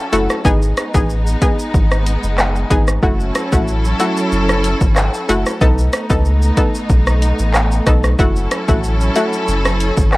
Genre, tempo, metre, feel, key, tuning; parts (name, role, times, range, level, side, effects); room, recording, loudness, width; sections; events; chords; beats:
dancehall; 93 BPM; 4/4; straight; F# dorian; A4 = 439 Hz
rich studio string section; sustained chords; 0.0-10.2 s; F#3 to A4; -21 LUFS; equal; sidechain pumping
analog pluck; accompaniment; 0.1-9.5 s; A3 to A4; -19 LUFS; left 1 dB; chorus
warm sub bass; bass; 0.1-10.2 s; F#1 to C#2; -16 LUFS; equal
deep house drum kit; drums; 0.1-10.2 s; handclaps, hi-hat, kick drum, rim click, shaker; -16 LUFS; equal
digital ambience; worn, warbling old tape, cassette tape, warbly pitch drift; -13 LUFS; side -20 dB against mid
0.0-10.2 A section
0.5 G#m; 3.0 F#m7; 5.6 B7; 8.2 F#m7
| 0.45 1.09 1.74 2.38 | 3.03 3.68 4.32 4.97 | 5.61 6.26 6.90 7.55 | 8.19 8.84 9.48 10.13